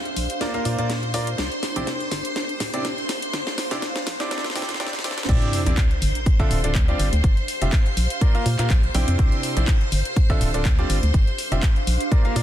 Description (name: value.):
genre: piano house.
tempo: 123 BPM.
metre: 4/4.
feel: swing 55% on 16ths.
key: C mixolydian.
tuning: A4 = 440 Hz.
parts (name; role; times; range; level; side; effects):
string machine, violins; sustained chords; 0.0-12.4 s; C5 to C6; -30 LUFS; equal; ensemble chorus, sidechain pumping.
granular cloud pad; texture; 0.0-12.4 s; D4 to F5; -34 LUFS; right 1 dB; built-in reverb, sidechain pumping.
house drum kit; drums; 0.1-12.4 s; crash cymbal, handclaps, hi-hat, snare drum; -29 LUFS; left 1 dB; none.
organ-like FM bass; bass; 0.2-12.4 s; D1 to Bb2; -23 LUFS; equal; sidechain pumping.
clear concert grand piano; riff; 0.4-12.4 s; C3 to G5; -28 LUFS; right 1 dB; sidechain pumping, low-pass filter, tape echo.
electronic kick drum; drums; 5.3-12.2 s; none; -18 LUFS; equal; none.
sub drop; sound effects; 5.3-7.2 s; none; -28 LUFS; equal; none.
room: little or no reverb.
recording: dense, heavily limited modern master, high-pass filter.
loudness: -19 LUFS.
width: side -12 dB against mid.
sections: 0.0-5.3 A section; 5.3-12.4 B section.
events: build-up 0.0-5.3; drum fill 0.0-5.3; filter sweep 0.0-5.3; drop 5.3-12.4; impact 5.3-7.2.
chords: 0.2 Bb; 1.4 Cadd9; 2.4 Dm7; 3.1 G7sus4; 4.1 Bb; 5.3 Cadd9; 6.3 Dm7; 7.0 G7sus4; 8.0 Bb; 9.2 Cadd9; 10.2 Dm7; 10.9 G7sus4; 11.9 Bb.